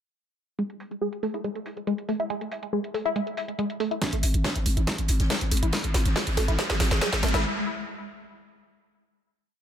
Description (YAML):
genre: driving peak-time techno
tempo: 140 BPM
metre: 4/4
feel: straight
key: unclear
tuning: A4 = 439 Hz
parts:
  - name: tight sequenced synth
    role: riff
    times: 0.6-7.4 s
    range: G#3 to E4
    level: -30 LUFS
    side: equal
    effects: chorus, phaser, sidechain pumping, analog delay
  - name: techno drum kit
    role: drums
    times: 0.6-7.4 s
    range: hi-hat, snare drum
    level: -30 LUFS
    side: equal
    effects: overdrive, high-pass filter on hats, low-pass filter on hats, high-pass filter on snare, low-pass filter on snare
  - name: electronic kick drum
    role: drums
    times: 4.0-7.1 s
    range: none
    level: -35 LUFS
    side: equal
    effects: high-pass filter on kick, high-pass filter on room
  - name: open jazz drum kit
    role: drums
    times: 4.0-7.4 s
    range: hi-hat, snare drum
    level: -37 LUFS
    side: right 2 dB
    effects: sidechain pumping on hats, high-pass filter on hats, high-pass filter on snare, high-pass filter on room, analog delay
  - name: riser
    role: sound effects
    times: 5.1-7.4 s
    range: none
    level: -32 LUFS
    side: left 1 dB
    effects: none
  - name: growling 808-style bass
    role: bass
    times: 4.1-7.4 s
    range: G#1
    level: -24 LUFS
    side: equal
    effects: overdrive, sidechain pumping, low-pass filter
room: light reverb, digital ambience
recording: echo-heavy mix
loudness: -24 LUFS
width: side -9 dB against mid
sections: 0.6-4.0 intro; 4.0-7.4 build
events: build-up 4.0-7.4; drum fill 4.0-7.4; filter sweep on synth arpeggio sound 4.0-7.4; riser 5.1-7.4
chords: 0.6 Eadd11/G#; 4.0 N.C.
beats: | 0.59 1.01 1.44 1.87 | 2.30 2.73 3.16 3.59 | 4.01 4.44 4.87 5.30 | 5.73 6.16 6.59 7.01